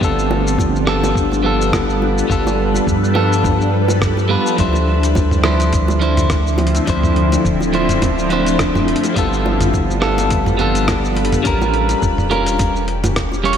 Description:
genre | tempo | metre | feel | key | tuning
sunset chillout | 105 BPM | 4/4 | swing 56% on 16ths | D dorian | A4 = 440 Hz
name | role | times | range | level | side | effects
clean electric guitar | accompaniment | 0.0-13.6 s | F3 to C#5 | -19 LUFS | equal | auto-pan, ping-pong delay, slapback echo
shimmering ambient pad | sustained chords | 0.0-13.6 s | D3 to B4 | -19 LUFS | equal | chorus, built-in reverb, phaser
warm sub bass | bass | 0.0-13.6 s | D1 to G2 | -19 LUFS | equal | none
dusty soul sampler-style drum kit | drums | 0.0-13.6 s | hi-hat, rim click, shaker, toms | -22 LUFS | equal | none
electronic kick drum | drums | 0.0-13.3 s | none | -20 LUFS | equal | none
bongos | percussion | 0.3-13.4 s | none | -28 LUFS | right 2 dB | none
room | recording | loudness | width
moderate lush hall reverb, RT60 1.9 s | big arena sound | -14 LUFS | side -8 dB against mid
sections
0.0-13.6 A section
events
none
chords
0.0 G9; 4.6 Dm9; 9.2 G9; 11.4 A7b9b13

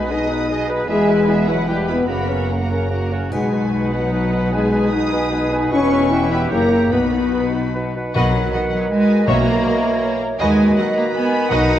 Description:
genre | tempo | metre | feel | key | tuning
classical, dramatic, fast romantic movement for symphony orchestra | 144-165 BPM | 3/4 | rubato | B major | A4 = 440 Hz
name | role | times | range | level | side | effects
rich studio violin section | melody | 0.0-11.7 s | G4 to E5 | -30 LUFS | equal | none
clear oboe | second line | 0.0-11.8 s | F#4 to C#5 | -29 LUFS | right 1 dB | none
clear symphonic violin section | second line | 0.0-11.8 s | D#5 to D#6 | -30 LUFS | left 2 dB | none
dark clarinet | second line | 0.0-11.8 s | C#4 to G#4 | -29 LUFS | left 1 dB | none
small flute group | second line | 0.0-11.8 s | C#5 to G#5 | -28 LUFS | right 1 dB | none
clear symphonic viola section | accompaniment | 0.0-11.7 s | A#3 to C#5 | -27 LUFS | right 1 dB | none
warm bassoon | accompaniment | 0.0-11.8 s | B2 to E3 | -26 LUFS | equal | none
mellow French horn section | sustained chords | 0.0-11.8 s | F#3 to E5 | -20 LUFS | left 2 dB | none
clear symphonic cello section | bass | 0.0-11.8 s | E2 to D#4 | -23 LUFS | right 2 dB | none
rich symphonic double bass section | bass | 0.0-11.8 s | E1 to D#2 | -26 LUFS | right 1 dB | none
timpani | percussion | 0.0-0.3, 3.3-3.9, 8.2-11.8 s | B2 | -24 LUFS | equal | none
triangle | percussion | 3.3-4.1 s | none | -52 LUFS | equal | none
room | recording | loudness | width
wet scoring stage reverb, RT60 1.7 s | worn, warbling old tape, cassette tape, warbly pitch drift | -15 LUFS | side -11 dB against mid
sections
0.0-8.2 A section; 8.2-11.8 B section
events
none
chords
0.0 G#m/B; 0.9 E; 1.7 Em; 2.1 F#; 3.3 B; 4.5 G#m/B; 5.7 E; 6.1 Em; 6.5 F#7b9; 6.9 B; 9.3 F#7/B; 10.4 B/D#

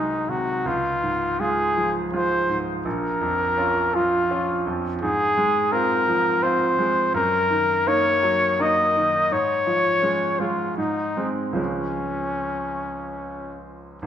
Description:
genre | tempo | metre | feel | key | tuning
classical, romantic duo for trumpet and grand piano | 70-87 BPM | 3/4 | rubato | Db major | A4 = 440 Hz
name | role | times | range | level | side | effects
warm trumpet | melody | 0.0-14.1 s | Db4 to Eb5 | -21 LUFS | left 1 dB | none
bright grand piano | accompaniment | 0.0-14.1 s | Ab1 to F4 | -25 LUFS | right 2 dB | none
room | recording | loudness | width
wet recital hall reverb, RT60 1.6 s | minimal, uncompressed stereo recording | -20 LUFS | side -9 dB against mid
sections
0.0-14.0 A section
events
none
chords
0.0 Ab7/C; 0.7 Db; 2.9 Bbm; 5.0 Fm/Ab; 7.1 Ebm/Gb; 9.3 Db/Ab; 10.8 Ab; 11.6 Db

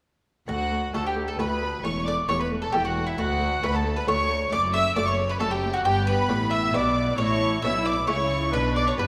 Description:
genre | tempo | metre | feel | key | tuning
classical, baroque-style concerto movement with solo episodes | 134 BPM | 3/4 | straight | D major | A4 = 439 Hz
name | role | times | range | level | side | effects
mandolin | melody | 0.5-9.1 s | E4 to E5 | -30 LUFS | equal | none
rich chamber violin section | melody | 0.5-9.1 s | E5 to E6 | -33 LUFS | equal | none
rich chamber violin section | second line | 0.5-9.0 s | E4 to E5 | -32 LUFS | equal | none
buff-stop harpsichord | accompaniment | 0.5-9.1 s | D2 to A4 | -36 LUFS | equal | none
warm chamber viola section | accompaniment | 0.5-9.1 s | A3 to E4 | -35 LUFS | equal | none
rich studio double bass section | bass | 0.5-9.1 s | E1 to D2 | -33 LUFS | equal | none
warm chamber cello section | bass | 0.5-9.1 s | D2 to C#3 | -32 LUFS | equal | none
room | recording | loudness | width
moderate concert hall reverb, RT60 2.1 s | none | -24 LUFS | mono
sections
0.5-9.1 A section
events
none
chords
0.5 D; 1.8 A5/E; 3.2 D; 4.5 Bm11/F# (rootless); 5.9 G; 7.2 A; 8.5 Bm

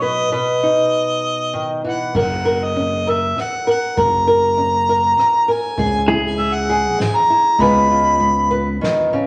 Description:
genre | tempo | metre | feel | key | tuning
acoustic folk-pop ballad | 99 BPM | 3/4 | straight | unclear | A4 = 443 Hz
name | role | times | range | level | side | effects
warm harmonica | melody | 0.0-8.8 s | D#5 to B5 | -20 LUFS | equal | none
nylon-string guitar | accompaniment | 0.0-9.3 s | G#2 to B4 | -21 LUFS | equal | none
fingered electric bass | bass | 2.1-8.8 s | F#1 to C#2 | -26 LUFS | equal | none
soft-mallet drum kit | drums | 2.1-9.3 s | crash cymbal, kick drum, ride cymbal, rim click, snare drum | -33 LUFS | equal | none
semi-hollow electric guitar | arpeggios | 6.1-7.1 s | G#4 | -23 LUFS | equal | harmonic tremolo
room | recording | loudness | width
wet studio reverb, RT60 0.9 s | none | -17 LUFS | mono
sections
0.0-2.1 A section; 2.1-9.3 B section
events
none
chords
0.0 B; 2.1 F#; 5.8 C#m; 7.6 C#7

